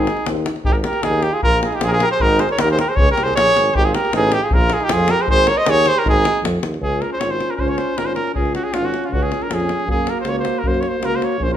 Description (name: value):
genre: balkan folk, Balkan brass band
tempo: 156 BPM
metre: 2/4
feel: straight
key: Ab major, Db major from 6.8 s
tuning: A4 = 441 Hz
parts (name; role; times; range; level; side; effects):
- clear cornet; melody; 0.0-11.6 s; F4 to Eb5; -18 LUFS; equal; none
- mellow flugelhorn; second line; 0.0-6.4 s; Eb4 to C5; -24 LUFS; right 5 dB; none
- bright trombone; accompaniment; 0.0-0.4, 6.8-11.6 s; Bb3 to Db4; -26 LUFS; right 5 dB; none
- mellow euphonium; accompaniment; 0.0-0.4, 6.8-11.6 s; Eb4 to Gb4; -26 LUFS; left 6 dB; none
- clear tuba; bass; 0.0-11.6 s; Ab1 to Gb2; -22 LUFS; equal; none
- davul; percussion; 0.1-11.6 s; none; -22 LUFS; left 1 dB; none
room: wet large studio reverb, RT60 1.0 s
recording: band playing live in one room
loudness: -15 LUFS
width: side -10 dB against mid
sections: 0.6-6.8 A section; 6.8-11.6 B section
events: speeding up 0.0-11.6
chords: 0.0 Ab; 0.6 Ab5; 1.4 Bb7(no3); 2.2 Ab5; 3.0 Db5; 3.7 Fm11/Ab; 4.5 Bb5; 5.3 Ab5; 6.8 Db; 9.9 Gb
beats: 0.26 | 0.65 1.04 | 1.43 1.81 | 2.20 2.59 | 2.98 3.36 | 3.75 4.13 | 4.52 4.90 | 5.29 5.67 | 6.05 6.44 | 6.82 7.20 | 7.59 7.97 | 8.35 8.74 | 9.12 9.50 | 9.88 10.26 | 10.64 11.02 | 11.40